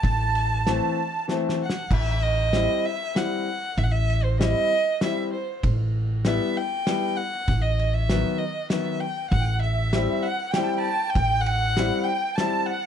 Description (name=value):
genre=klezmer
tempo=97 BPM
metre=3/4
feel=straight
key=unclear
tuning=A4 = 441 Hz
part: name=rich violin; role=melody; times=0.0-12.9 s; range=C5 to B5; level=-27 LUFS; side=right 1 dB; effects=none
part: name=musette accordion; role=second line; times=0.0-1.3, 9.3-12.9 s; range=E5 to A5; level=-29 LUFS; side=right 7 dB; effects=tape echo
part: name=upright bass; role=bass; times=0.0-11.9 s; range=A1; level=-24 LUFS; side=equal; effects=none
part: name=loose indie drum kit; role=drums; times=0.0-12.5 s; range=crash cymbal, kick drum, ride cymbal, snare drum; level=-29 LUFS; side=equal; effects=none
part: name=bright upright piano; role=accompaniment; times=0.7-12.7 s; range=D#3 to E4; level=-27 LUFS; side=left 4 dB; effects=none
room=light reverb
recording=dark, warm production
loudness=-22 LUFS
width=side -8 dB against mid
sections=0.0-1.9 A section; 1.9-12.9 A section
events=drum fill 1.3-1.9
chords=0.0 Am; 1.9 C/A; 5.6 Em/A; 7.5 B/A; 9.3 C/A